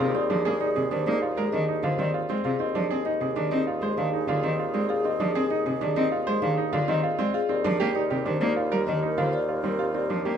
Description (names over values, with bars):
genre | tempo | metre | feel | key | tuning
classical, minimalist pattern music | 98 BPM | 4/4 | straight | unclear | A4 = 440 Hz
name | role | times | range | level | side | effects
marimba with soft mallets | melody | 0.0-10.4 s | G4 to F5 | -29 LUFS | left 6 dB | none
bright alto flute | second line | 0.0-10.4 s | Ab4 to Bb4 | -34 LUFS | right 4 dB | none
rich cello | accompaniment | 0.0-10.4 s | C3 to C4 | -29 LUFS | equal | none
bright baby grand piano | arpeggios | 0.0-10.4 s | C4 to C5 | -29 LUFS | right 6 dB | none
mellow bassoon | bass | 0.0-10.4 s | Eb2 | -31 LUFS | right 1 dB | none
room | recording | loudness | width
light reverb | none | -23 LUFS | side -8 dB against mid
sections
0.0-10.4 A section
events
none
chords
0.0 Bb9sus4/Eb; 2.6 Fm7/Eb; 7.5 Cm11/Eb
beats
| 0.15 0.76 1.37 1.99 | 2.60 3.21 3.82 4.43 | 5.05 5.66 6.27 6.88 | 7.50 8.11 8.72 9.33 | 9.94